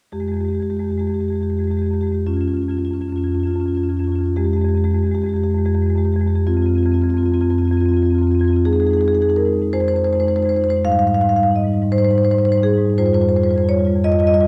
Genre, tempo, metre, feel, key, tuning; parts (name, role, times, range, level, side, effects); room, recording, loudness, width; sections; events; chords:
classical, contemporary piece for solo marimba; 56 BPM (dotted quarters); 6/8; rubato; F minor; A4 = 440 Hz
marimba with medium hard mallets; solo; 0.1-14.5 s; F2 to F5; -18 LUFS; equal
light reverb; dark, warm production; -18 LUFS; mono
0.1-8.7 A section; 8.7-14.5 B section
0.1 Fmadd9; 2.3 Db/F; 4.4 Fmadd9; 6.5 F5; 8.7 Fm7; 10.8 Abmaj7; 13.0 Fsus2